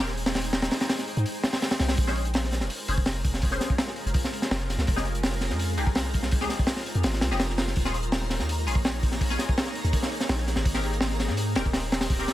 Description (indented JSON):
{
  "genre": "drum and bass, jungle",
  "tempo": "166 BPM",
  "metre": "4/4",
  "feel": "straight",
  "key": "unclear",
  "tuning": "A4 = 440 Hz",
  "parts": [
    { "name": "band-passed chord stab", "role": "stabs", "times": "0.0-12.3 s", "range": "C4 to C5", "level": "-35 LUFS", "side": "left 3 dB", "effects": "phaser, ensemble chorus, dub echo" },
    { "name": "long sustained 808-style bass", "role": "bass", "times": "0.0-12.3 s", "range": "Eb1 to Ab2", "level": "-28 LUFS", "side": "equal", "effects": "none" },
    { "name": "twinkling granular texture", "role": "texture", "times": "0.2-12.3 s", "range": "Ab3 to Bb5", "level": "-41 LUFS", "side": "equal", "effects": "built-in reverb" },
    { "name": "crunchy breakbeat drum kit", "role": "drums", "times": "0.1-12.3 s", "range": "hi-hat, kick drum, snare drum", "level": "-26 LUFS", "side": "equal", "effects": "none" }
  ],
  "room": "small room ambience",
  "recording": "none",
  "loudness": "-24 LUFS",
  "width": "side -14 dB against mid",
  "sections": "0.0-12.3 A section",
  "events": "kick drops out 1.3-2.0",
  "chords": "0.0 Abmaj7; 2.0 Bbm7; 4.9 Fm7; 7.8 Eb7sus4; 10.7 Abmaj7"
}